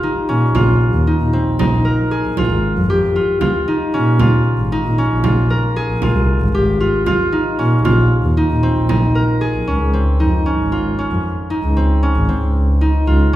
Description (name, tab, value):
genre	contemporary instrumental, chamber music in an uneven meter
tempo	230 BPM (eighths)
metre	7/8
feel	straight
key	unclear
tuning	A4 = 445 Hz
part	concert harp	arpeggios	0.0-13.4 s	C4 to Bb4	-18 LUFS	equal	none
part	dark double bass	bass	0.3-13.4 s	Ab1 to Bb2	-16 LUFS	equal	none
part	frame drum	percussion	0.5-9.3 s	none	-22 LUFS	right 3 dB	none
room	wet recital hall reverb, RT60 1.6 s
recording	recorded in a church or concert hall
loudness	-13 LUFS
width	side -14 dB against mid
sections	0.0-9.7 A section; 9.7-13.4 B section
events	none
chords	0.0 Dbadd9; 0.5 Fm7/Bb; 2.4 Bbm7; 7.8 Fm7/Bb; 9.7 Dbmaj9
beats	0.03 0.29 | 0.55 0.81 1.07 1.33 1.59 1.85 2.11 | 2.37 2.63 2.89 3.15 3.41 3.67 3.94 | 4.20 4.46 4.72 4.98 5.24 5.50 5.76 | 6.02 6.28 6.54 6.80 7.07 7.33 7.59 | 7.85 8.11 8.37 8.63 8.89 9.15 9.41 | 9.68 9.94 10.20 10.46 10.72 10.98 11.24 | 11.50 11.76 12.03 12.29 12.55 12.81 13.07 | 13.33